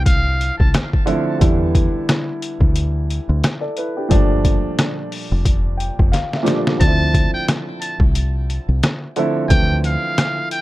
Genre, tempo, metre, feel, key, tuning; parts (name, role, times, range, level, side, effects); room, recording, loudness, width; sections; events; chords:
hip hop, boom-bap hip-hop; 89 BPM; 4/4; swing 58% on 16ths; D minor; A4 = 440 Hz
trumpet with metal mute; melody; 0.0-0.7, 6.8-10.6 s; F5 to A5; -23 LUFS; right 1 dB; high-pass filter, low-pass filter, tape echo
dark concert grand piano; accompaniment; 0.0-10.6 s; Bb2 to G5; -22 LUFS; right 1 dB; cassette tape, high-pass filter, low-pass filter
deep dub fingered electric bass; bass; 0.0-10.0 s; F1 to E2; -18 LUFS; equal
trip hop sampler-style drum kit; drums; 0.1-10.6 s; hi-hat, kick drum, rim click, snare drum; -17 LUFS; equal
little or no reverb; -15 LUFS; side -17 dB against mid
0.0-10.6 A section
grand piano fill 5.5-6.8; drum fill 6.1-6.8
0.0 Dm7; 1.4 Em7; 4.1 Gm7; 6.8 Dm7